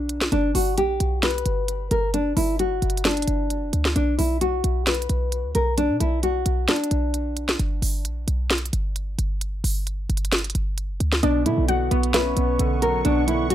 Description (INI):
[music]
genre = hip hop, trap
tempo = 132 BPM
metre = 4/4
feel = half-time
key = B harmonic minor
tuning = A4 = 438 Hz
[part]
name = nylon-string guitar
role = melody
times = 0.0-7.6, 11.2-13.5 s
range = D4 to B4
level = -23 LUFS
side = left 1 dB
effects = tape echo
[part]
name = short 808-style bass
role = bass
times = 0.0-13.5 s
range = F#1 to B2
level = -24 LUFS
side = equal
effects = none
[part]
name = trap drum kit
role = drums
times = 0.1-13.5 s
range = hi-hat, snare drum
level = -24 LUFS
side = right 1 dB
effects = none
[part]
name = warbly dusty pluck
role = second line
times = 11.2-12.6 s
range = D5 to F#5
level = -31 LUFS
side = left 4 dB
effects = chorus, phaser, tape echo
[part]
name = dark baby grand piano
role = accompaniment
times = 11.2-13.5 s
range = B2 to C#4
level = -26 LUFS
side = right 6 dB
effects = none
[part]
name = sweeping resonant pad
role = sustained chords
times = 11.7-13.5 s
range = B4 to C#6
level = -32 LUFS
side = left 1 dB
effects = chorus, phaser
[sound]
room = light reverb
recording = none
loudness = -20 LUFS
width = side -12 dB against mid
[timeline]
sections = 0.0-11.2 A section; 11.2-13.5 B section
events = break 7.6-11.2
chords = 0.3 G; 4.0 Bm; 7.6 G; 11.2 Bmadd9